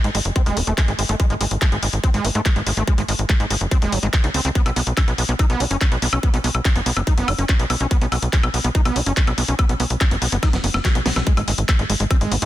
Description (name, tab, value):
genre	psychedelic trance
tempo	143 BPM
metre	4/4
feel	straight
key	unclear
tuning	A4 = 440 Hz
part	screaming distorted acid line	riff	0.0-12.5 s	F#3 to F#4	-26 LUFS	right 1 dB	distortion, chorus, auto-pan, sidechain pumping, dub echo
part	tight sequencer bass	bass	0.0-12.5 s	D#1 to G#2	-22 LUFS	equal	none
part	big-room dance drum kit	drums	0.0-12.5 s	handclaps, hi-hat, snare drum, woodblock	-24 LUFS	left 2 dB	none
part	electronic kick drum	drums	0.4-12.2 s	none	-18 LUFS	equal	none
room	digital ambience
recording	dense, heavily limited modern master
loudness	-17 LUFS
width	side -14 dB against mid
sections	0.0-11.3 A section; 11.3-12.5 B section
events	drum fill 10.4-11.3; drop 11.3-12.5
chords	0.0 G#5; 4.6 B5; 11.3 G#5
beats	0.36 0.78 | 1.20 1.62 2.04 2.46 | 2.88 3.29 3.71 4.13 | 4.55 4.97 5.39 5.81 | 6.23 6.65 7.07 7.49 | 7.91 8.33 8.75 9.17 | 9.59 10.01 10.43 10.85 | 11.27 11.69 12.11